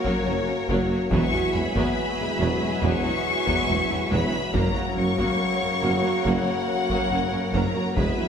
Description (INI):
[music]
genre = cinematic, hybrid orchestral and electronic film score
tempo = 70 BPM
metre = 4/4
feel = straight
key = unclear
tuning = A4 = 439 Hz
[part]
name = rich symphonic violin section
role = melody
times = 0.0-8.3 s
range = Db5 to Db6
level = -29 LUFS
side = left 4 dB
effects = none
[part]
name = rich symphonic violin section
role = second line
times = 0.0-8.3 s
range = G#4 to E5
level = -31 LUFS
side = left 2 dB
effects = none
[part]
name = rich symphonic viola section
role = accompaniment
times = 0.0-8.3 s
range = Gb3 to Gb4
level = -31 LUFS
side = equal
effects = none
[part]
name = clear trombone section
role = sustained chords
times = 0.0-8.3 s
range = Db3 to F#3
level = -32 LUFS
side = right 3 dB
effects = none
[part]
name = glassy FM pad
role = sustained chords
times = 0.0-8.3 s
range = Gb3 to Gb5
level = -33 LUFS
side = left 1 dB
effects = none
[part]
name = mellow French horn section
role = sustained chords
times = 0.0-8.3 s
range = G#3 to Gb4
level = -32 LUFS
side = equal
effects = none
[part]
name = thumb-piano-like synth pluck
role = arpeggios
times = 0.0-8.3 s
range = E3 to Gb4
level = -33 LUFS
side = right 1 dB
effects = none
[part]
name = taiko ensemble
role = drums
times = 0.0-8.3 s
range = none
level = -32 LUFS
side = left 1 dB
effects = none
[part]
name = rich symphonic cello section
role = bass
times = 0.1-8.3 s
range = E2 to Gb2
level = -30 LUFS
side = right 1 dB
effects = none
[part]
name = mellow tuba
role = bass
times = 0.3-8.1 s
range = E1 to Gb1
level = -32 LUFS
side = right 2 dB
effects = none
[part]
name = rich symphonic double bass section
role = bass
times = 0.3-8.0 s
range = E1 to Gb1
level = -30 LUFS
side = right 2 dB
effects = none
[sound]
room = wet recital hall reverb, RT60 1.3 s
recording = recorded in a church or concert hall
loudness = -21 LUFS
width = side -7 dB against mid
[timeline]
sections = 0.0-8.3 A section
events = none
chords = 0.0 Gb; 1.1 Eadd9; 4.5 Gb